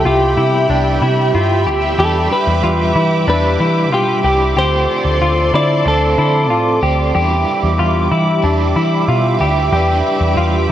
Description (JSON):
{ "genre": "dream pop", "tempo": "93 BPM", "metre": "4/4", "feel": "straight", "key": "unclear", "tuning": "A4 = 438 Hz", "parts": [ { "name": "clean electric guitar", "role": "melody", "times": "0.0-6.8 s", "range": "G4 to D5", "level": "-17 LUFS", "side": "left 1 dB", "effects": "ping-pong delay" }, { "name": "overdriven semi-hollow guitar", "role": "accompaniment", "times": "0.0-10.7 s", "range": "C3 to C5", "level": "-22 LUFS", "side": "right 3 dB", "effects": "tremolo, lush chorus" }, { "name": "lush unison pad", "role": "sustained chords", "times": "0.0-10.7 s", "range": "G4 to D6", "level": "-19 LUFS", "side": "right 1 dB", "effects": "chorus, phaser" }, { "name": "semi-hollow electric guitar", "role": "arpeggios", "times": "0.0-10.7 s", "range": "D4 to G4", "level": "-19 LUFS", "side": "left 2 dB", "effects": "wide subtle chorus, ping-pong delay" }, { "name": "vintage muted picked electric bass", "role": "bass", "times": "0.0-10.7 s", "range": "C2 to E3", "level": "-17 LUFS", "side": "equal", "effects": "none" }, { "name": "vibraphone with medium mallets", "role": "texture", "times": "0.0-10.7 s", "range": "B4 to G5", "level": "-28 LUFS", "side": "right 1 dB", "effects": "none" } ], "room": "moderate lush hall reverb, RT60 1.9 s", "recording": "worn, warbling old tape, cassette tape, warbly pitch drift", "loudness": "-12 LUFS", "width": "side -11 dB against mid", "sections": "0.0-10.7 A section", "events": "none", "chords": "0.0 Cmaj7; 4.6 Dm7; 7.2 Em7", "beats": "0.05 0.70 1.34 | 1.99 2.63 3.28 3.92 | 4.57 5.21 5.86 6.50 | 7.15 7.79 8.44 9.09 | 9.73 10.38" }